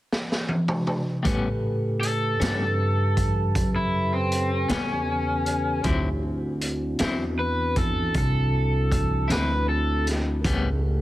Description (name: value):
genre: slow blues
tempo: 52 BPM (dotted quarters)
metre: 12/8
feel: straight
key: A mixolydian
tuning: A4 = 440 Hz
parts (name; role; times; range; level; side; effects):
- raw garage drum kit; drums; 0.1-10.6 s; hi-hat, kick drum, snare drum, toms; -28 LUFS; equal; none
- electric guitar at the edge of break-up; accompaniment; 1.2-10.7 s; A2 to E4; -30 LUFS; left 3 dB; tremolo
- mellow tonewheel organ; sustained chords; 1.3-11.0 s; C#3 to C#5; -31 LUFS; equal; slow rotary speaker
- upright bass; bass; 1.3-11.0 s; C2 to A2; -25 LUFS; equal; none
- raw garage guitar; melody; 2.0-10.1 s; C4 to B4; -27 LUFS; equal; overdrive
room: light reverb, small room ambience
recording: heavily compressed radio sound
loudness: -22 LUFS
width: side -15 dB against mid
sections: 0.0-1.2 A section; 1.2-11.0 B section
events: drum fill 0.1-1.2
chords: 0.0 N.C.; 1.2 A9; 5.8 D9; 10.5 A9